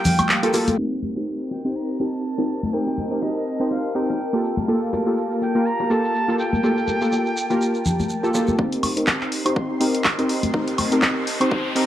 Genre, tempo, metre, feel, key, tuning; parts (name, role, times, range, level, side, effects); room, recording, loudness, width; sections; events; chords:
deep house; 123 BPM; 4/4; swing 57% on 16ths; A4 = 439 Hz
breathy bright jazz flute; melody; 0.0-8.1 s; Eb5 to Bb5; -29 LUFS; right 1 dB; tape echo
warm analog pad; sustained chords; 0.0-11.9 s; G3 to Bb5; -28 LUFS; equal; chorus, sidechain pumping
warm analog keys; stabs; 0.0-11.9 s; Bb3 to C5; -22 LUFS; equal; chorus, sidechain pumping, low-pass filter, tape echo
punchy analog drum machine; drums; 0.1-0.8, 8.7-11.9 s; handclaps, hi-hat, woodblock; -23 LUFS; equal; low-pass filter on hats, low-pass filter on perc, low-pass filter on snare, low-pass filter on room
congas and bongos; percussion; 0.1-10.9 s; -26 LUFS; left 2 dB
shekere; percussion; 0.1-8.6 s; -35 LUFS; right 2 dB
downlifter and riser; sound effects; 1.0-4.7, 9.7-11.9 s; -36 LUFS; equal
soft string machine; texture; 0.8-11.9 s; Bb4 to C6; -34 LUFS; equal; phaser, ensemble chorus
electronic kick drum; drums; 8.6-11.6 s; -26 LUFS; equal; high-pass filter on kick, high-pass filter on room
moderate plate reverb, RT60 1.5 s; dark, warm production, vinyl crackle, low-pass filter; -19 LUFS; side -12 dB against mid
0.8-8.6 A section; 8.6-11.9 B section
break 0.0-0.8; filter sweep on synth keys 0.8-8.6, 8.6-11.9; filter sweep on analog synth pad 0.8-8.6, 8.6-11.9; filter sweep 0.8-8.6; build-up 8.6-11.9; riser 9.7-11.9
0.0 Gm9; 0.8 Cm7; 4.4 Gm9; 8.6 Cm7